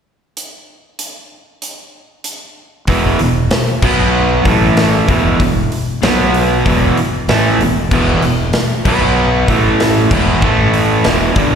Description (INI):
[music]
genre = hard rock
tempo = 95 BPM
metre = 4/4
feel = straight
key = unclear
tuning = A4 = 438 Hz
[part]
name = big rock drum kit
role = drums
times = 0.4-11.5 s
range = crash cymbal, hi-hat, kick drum, snare drum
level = -18 LUFS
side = equal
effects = none
[part]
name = crunchy overdriven guitar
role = riff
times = 2.9-11.6 s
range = E2 to B3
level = -14 LUFS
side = right 6 dB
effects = slapback echo
[part]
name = overdriven semi-hollow guitar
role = riff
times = 2.9-11.6 s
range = E2 to B3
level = -18 LUFS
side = left 13 dB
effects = slapback echo
[part]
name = fuzz fingered electric bass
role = bass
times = 2.9-11.6 s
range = E1 to B1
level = -18 LUFS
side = equal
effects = overdrive
[sound]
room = little or no reverb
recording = live gig heard through the venue's PA, recital hall reverb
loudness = -11 LUFS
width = side -7 dB against mid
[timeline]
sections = 0.4-2.9 A section; 2.9-11.6 B section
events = none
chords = 0.4 N.C.; 2.9 E5; 3.8 B5; 4.5 A5; 5.1 E5; 6.0 B5; 6.7 E5; 8.9 B5; 9.5 A5; 10.1 E5; 10.4 A5; 11.1 E5